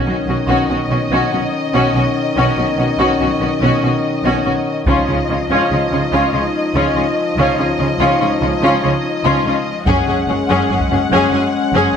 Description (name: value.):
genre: cinematic, epic orchestral film score.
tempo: 96 BPM (dotted quarters).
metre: 12/8.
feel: straight.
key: unclear.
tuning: A4 = 440 Hz.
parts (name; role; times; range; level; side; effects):
warm symphonic violin section; melody; 0.0-12.0 s; D#5 to F#5; -23 LUFS; left 3 dB; none.
warm symphonic violin section; second line; 0.0-11.9 s; E#4 to G#4; -20 LUFS; left 2 dB; none.
rich symphonic viola section; accompaniment; 0.0-11.9 s; C#4; -20 LUFS; equal; none.
mellow French horn section; sustained chords; 0.0-12.0 s; D#3 to D#4; -20 LUFS; left 3 dB; none.
rich symphonic cello section; bass; 0.1-11.8 s; F#2 to C#3; -22 LUFS; right 3 dB; none.
warm symphonic double bass section; bass; 0.1-12.0 s; F#1 to C#2; -23 LUFS; right 2 dB; none.
solo taiko drums; drums; 4.9-5.7, 9.9-11.0 s; none; -22 LUFS; equal; none.
room: wet scoring stage reverb, RT60 1.6 s.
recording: none.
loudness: -13 LUFS.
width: side -7 dB against mid.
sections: 0.0-12.0 A section.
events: build-up 0.0-12.0.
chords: 0.0 Badd9; 4.9 C#add9; 9.9 F#sus2.